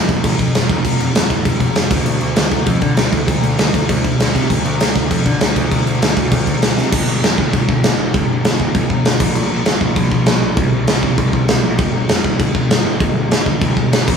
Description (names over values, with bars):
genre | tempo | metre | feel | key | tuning
punk rock | 198 BPM | 4/4 | straight | G minor | A4 = 440 Hz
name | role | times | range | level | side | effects
fuzz picked electric bass | bass | 0.0-14.2 s | F1 to D3 | -20 LUFS | right 1 dB | overdrive
big rock drum kit | drums | 0.1-14.1 s | crash cymbal, kick drum, snare drum | -14 LUFS | equal | none
room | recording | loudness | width
light reverb | band playing live in one room | -13 LUFS | side -6 dB against mid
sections
0.0-6.9 A section; 6.9-14.2 B section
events
drum fill 6.8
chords
none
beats
0.24 0.55 | 0.85 1.15 1.46 1.76 | 2.06 2.37 2.67 2.98 | 3.28 3.58 3.89 4.19 | 4.50 4.80 5.10 5.41 | 5.71 6.01 6.32 6.62 | 6.92 7.23 7.53 7.84 | 8.14 8.44 8.75 9.05 | 9.35 9.66 9.96 10.26 | 10.57 10.87 11.18 11.48 | 11.78 12.09 12.39 12.70 | 13.00 13.30 13.61 13.91